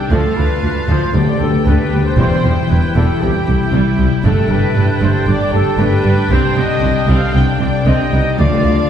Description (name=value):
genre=cinematic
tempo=116 BPM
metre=4/4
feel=straight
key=G mixolydian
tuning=A4 = 440 Hz
part: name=rich symphonic violin section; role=melody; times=0.0-8.9 s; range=F5 to G5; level=-28 LUFS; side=left 3 dB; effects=none
part: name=clear clarinet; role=second line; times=0.0-8.9 s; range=D4 to G4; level=-26 LUFS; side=equal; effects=none
part: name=mellow flute section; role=second line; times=0.0-8.9 s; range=G4 to G5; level=-27 LUFS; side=left 2 dB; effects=none
part: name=rich symphonic violin section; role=second line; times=0.0-8.9 s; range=B3 to E4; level=-29 LUFS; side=left 4 dB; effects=none
part: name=warm oboe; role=second line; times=0.0-8.9 s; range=G5 to A5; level=-27 LUFS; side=right 2 dB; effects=none
part: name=concert harp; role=arpeggios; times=0.0-8.9 s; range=G2 to A4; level=-22 LUFS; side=left 7 dB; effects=none
part: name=mellow trumpet section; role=stabs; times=0.0-8.9 s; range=G4 to G5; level=-21 LUFS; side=equal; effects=none
part: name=rich symphonic viola section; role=accompaniment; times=0.1-8.7 s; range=E3 to C4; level=-25 LUFS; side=equal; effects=none
part: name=clear trombone section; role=sustained chords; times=0.1-8.9 s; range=D3 to A3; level=-27 LUFS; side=right 2 dB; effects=none
part: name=mellow French horn section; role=sustained chords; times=0.1-8.9 s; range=A3 to G4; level=-26 LUFS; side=left 1 dB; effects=none
part: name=rich symphonic cello section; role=bass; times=0.1-8.7 s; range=C2 to G2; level=-18 LUFS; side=right 1 dB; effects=none
part: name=rich symphonic double bass section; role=bass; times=0.1-8.7 s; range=E1 to D2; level=-17 LUFS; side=right 1 dB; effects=none
part: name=timpani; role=percussion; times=1.2-1.9, 8.4-8.9 s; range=D3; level=-20 LUFS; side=left 2 dB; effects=none
room=wet scoring stage reverb, RT60 2.1 s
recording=heard from further back in the room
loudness=-12 LUFS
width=side -9 dB against mid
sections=0.0-8.9 A section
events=none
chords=0.1 Dm; 1.1 Gadd9/D; 2.2 Em; 3.2 C; 4.2 Gadd9; 6.3 Cmadd9; 8.4 Dm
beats=| 0.11 0.63 1.14 1.66 | 2.18 2.70 3.21 3.73 | 4.25 4.76 5.28 5.80 | 6.31 6.83 7.35 7.87 | 8.39